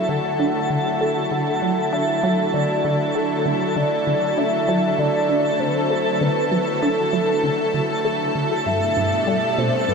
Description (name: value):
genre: ambient, sequencer-driven space music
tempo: 98 BPM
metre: 4/4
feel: straight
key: unclear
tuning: A4 = 443 Hz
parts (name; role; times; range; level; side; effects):
- soft octave-layered synth lead; melody; 0.0-9.9 s; A4 to F#5; -23 LUFS; left 1 dB; chorus, tremolo, ping-pong delay
- lush unison pad; sustained chords; 0.0-9.9 s; B2 to A4; -22 LUFS; right 1 dB; chorus
- resonant blip pluck; riff; 0.0-9.9 s; G2 to A4; -24 LUFS; equal; chorus, ping-pong delay
- twinkling granular texture; texture; 0.0-9.9 s; A4 to A5; -28 LUFS; equal; built-in reverb
room: wet huge ambient reverb, RT60 7.7 s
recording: none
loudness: -18 LUFS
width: side -5 dB against mid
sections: 0.0-9.9 A section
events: none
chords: 0.0 Dadd9; 8.7 Gadd9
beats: 0.09 0.70 | 1.31 1.93 2.54 3.15 | 3.76 4.38 4.99 5.60 | 6.21 6.82 7.44 8.05 | 8.66 9.27 9.88